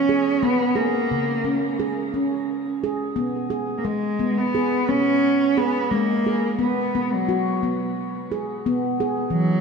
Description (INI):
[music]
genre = world meditative, meditative tuned percussion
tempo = 88 BPM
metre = 4/4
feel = swing 56% on 16ths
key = unclear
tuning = A4 = 442 Hz
[part]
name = warm cello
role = melody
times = 0.0-9.6 s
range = F#3 to C#4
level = -22 LUFS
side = right 1 dB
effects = shimmer reverb, diffuse ambient delay
[part]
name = handpan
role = arpeggios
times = 0.0-9.6 s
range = C#3 to G#4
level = -23 LUFS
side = equal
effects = shimmer reverb, diffuse ambient delay
[sound]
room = wet echo chamber reverb, RT60 2.0 s, studio ambience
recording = dark, warm production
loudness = -20 LUFS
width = side -5 dB against mid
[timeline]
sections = 0.0-9.6 A section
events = none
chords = 0.0 E; 1.1 C#5; 3.9 G#m; 6.6 B5